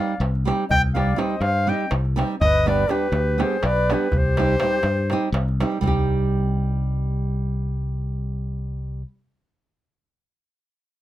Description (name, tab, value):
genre	balkan folk, Balkan wedding band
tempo	246 BPM (eighths)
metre	7/8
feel	straight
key	C harmonic minor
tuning	A4 = 442 Hz
part	warm clarinet	melody	0.0-5.4 s	B4 to G5	-23 LUFS	equal	none
part	bright bansuri	second line	0.0-5.3 s	G4 to Eb5	-29 LUFS	left 4 dB	none
part	nylon-string guitar	accompaniment	0.0-9.1 s	G3 to G4	-26 LUFS	right 4 dB	none
part	darbuka	percussion	0.1-6.1 s	none	-28 LUFS	right 1 dB	none
part	fingered electric bass	bass	0.2-9.0 s	G1 to G2	-23 LUFS	left 1 dB	none
room	light reverb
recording	close, detailed microphones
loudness	-19 LUFS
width	side -14 dB against mid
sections	0.0-5.8 A section; 5.8-9.2 B section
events	none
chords	0.0 Cm; 2.4 G; 4.1 Cm